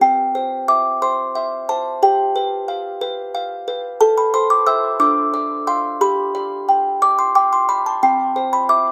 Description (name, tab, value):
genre	classical, lullaby for music box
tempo	60 BPM (dotted quarters)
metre	6/8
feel	straight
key	C major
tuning	A4 = 440 Hz
part	music box	solo	0.0-8.9 s	C4 to E6	-18 LUFS	equal	tape echo
room	light reverb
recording	close, detailed microphones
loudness	-18 LUFS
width	mono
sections	0.0-8.9 A section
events	none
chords	0.0 C; 2.0 G7; 4.0 Am; 5.0 Dm; 6.0 G; 8.0 C